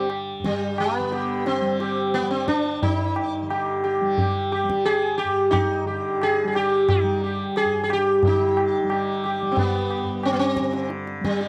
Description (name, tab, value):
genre	indian classical, Hindustani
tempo	89 BPM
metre	4/4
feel	straight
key	G raga bhairav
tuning	A4 = 440 Hz
part	sitar	melody	0.0-11.5 s	G3 to Ab4	-24 LUFS	equal	none
part	tanpura	drone	0.0-11.5 s	G2 to G3	-33 LUFS	equal	none
part	tabla	percussion	0.1-11.5 s	none	-30 LUFS	equal	none
room	light reverb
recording	dry, close 1970s-style studio recording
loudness	-23 LUFS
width	mono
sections	0.0-8.2 A section; 8.2-11.5 B section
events	none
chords	none